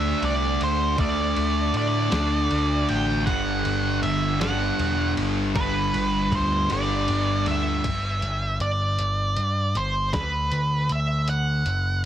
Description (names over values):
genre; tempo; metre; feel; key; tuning
quiet-loud alternative rock; 52 BPM (dotted quarters); 6/8; straight; unclear; A4 = 440 Hz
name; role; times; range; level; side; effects
octave-fuzz lead guitar; melody; 0.0-12.0 s; B4 to G5; -26 LUFS; right 2 dB; distortion
thick fuzz guitar; riff; 0.0-7.8 s; G2 to D4; -25 LUFS; equal; distortion
overdriven picked electric bass; bass; 0.0-12.1 s; E1 to A2; -26 LUFS; equal; none
lo-fi sampler-style drum kit; drums; 0.2-11.8 s; crash cymbal, hi-hat, kick drum, ride cymbal, snare drum; -32 LUFS; equal; none
room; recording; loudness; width
little or no reverb; heavily compressed radio sound; -21 LUFS; side -11 dB against mid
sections
0.0-7.8 A section; 7.8-12.1 B section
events
kick and snare drop out 6.7-7.8; half time 7.8-12.1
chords
0.0 D5; 3.3 Gmaj7; 7.8 G5; 10.1 D6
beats
| 0.98 2.12 | 3.27 4.41 | 5.55 6.70 | 7.84 8.99 | 10.13 11.28